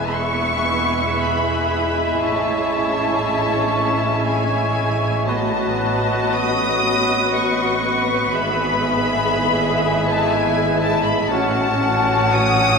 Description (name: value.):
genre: classical, slow romantic movement for symphony orchestra.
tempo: 59 BPM.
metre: 3/4.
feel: uneven beats, rubato.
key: E major.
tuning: A4 = 441 Hz.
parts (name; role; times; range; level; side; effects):
warm symphonic violin section; melody; 0.0-12.8 s; G#5 to D#6; -22 LUFS; left 3 dB; none.
clear clarinet; second line; 0.0-12.8 s; C#4 to F#4; -28 LUFS; left 3 dB; none.
clear symphonic violin section; second line; 0.0-12.8 s; F#4 to F#5; -27 LUFS; left 3 dB; none.
hollow concert flute; second line; 0.0-12.8 s; D#5 to F#5; -27 LUFS; left 1 dB; none.
warm cor anglais; second line; 0.0-12.8 s; B4 to C#5; -26 LUFS; right 2 dB; none.
mellow bassoon; accompaniment; 0.0-12.8 s; F#3 to G#3; -27 LUFS; right 3 dB; none.
warm symphonic viola section; accompaniment; 0.0-12.8 s; B3 to G#4; -25 LUFS; right 1 dB; none.
rich symphonic cello section; bass; 0.0-12.8 s; E2 to A2; -28 LUFS; right 2 dB; none.
rich symphonic double bass section; bass; 0.0-12.8 s; E1 to A1; -27 LUFS; right 2 dB; none.
room: wet church reverb, RT60 3.4 s.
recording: recorded in a church or concert hall.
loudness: -16 LUFS.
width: side -5 dB against mid.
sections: 0.0-12.8 A section.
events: none.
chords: 0.0 E; 2.2 Amaj7; 5.3 B7/A; 8.3 E/G#; 11.3 F#m/A.